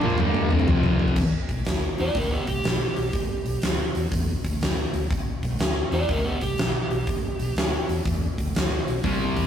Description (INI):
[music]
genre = blues rock power trio and southern rock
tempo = 122 BPM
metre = 4/4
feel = swing 66% on 8ths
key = G major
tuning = A4 = 440 Hz
[part]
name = rich cello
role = second line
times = 0.0-1.0 s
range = Bb3 to D4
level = -30 LUFS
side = right 2 dB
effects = none
[part]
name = thick fuzz guitar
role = riff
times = 0.0-1.2, 9.0-9.5 s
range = F2 to Bb3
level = -23 LUFS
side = left 1 dB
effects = distortion
[part]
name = vintage muted fingered electric bass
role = bass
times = 0.0-9.5 s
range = F1 to E2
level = -29 LUFS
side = equal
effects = none
[part]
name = huge arena drum kit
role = drums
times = 0.0-9.4 s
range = crash cymbal, hi-hat, kick drum, snare drum, toms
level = -24 LUFS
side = equal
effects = none
[part]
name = overdriven slide guitar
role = melody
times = 2.0-7.9 s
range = B3 to D5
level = -28 LUFS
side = right 3 dB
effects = none
[sound]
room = light reverb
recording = rough rehearsal-room recording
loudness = -22 LUFS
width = side -9 dB against mid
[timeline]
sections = 0.0-1.2 A section; 1.2-9.5 B section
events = drum fill 0.0-1.2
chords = 0.0 G5; 0.7 F5; 1.2 G